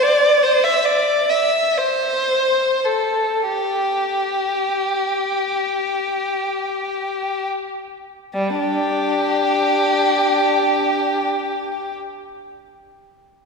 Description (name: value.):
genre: classical, free, expressive piece for unaccompanied violin.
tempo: 19-50 BPM (dotted quarters).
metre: 6/8.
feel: rubato.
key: unclear.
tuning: A4 = 440 Hz.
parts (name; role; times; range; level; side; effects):
rich violin; solo; 0.0-11.9 s; G3 to E5; -17 LUFS; equal; none.
room: wet church reverb, RT60 2.5 s.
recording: recorded in a church or concert hall.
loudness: -17 LUFS.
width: side -4 dB against mid.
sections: 0.0-8.3 A section; 8.3-12.4 B section.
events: slowing down 0.0-8.3.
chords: none.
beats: | 0.43 1.78 | 3.48 5.61 | 8.34 10.39.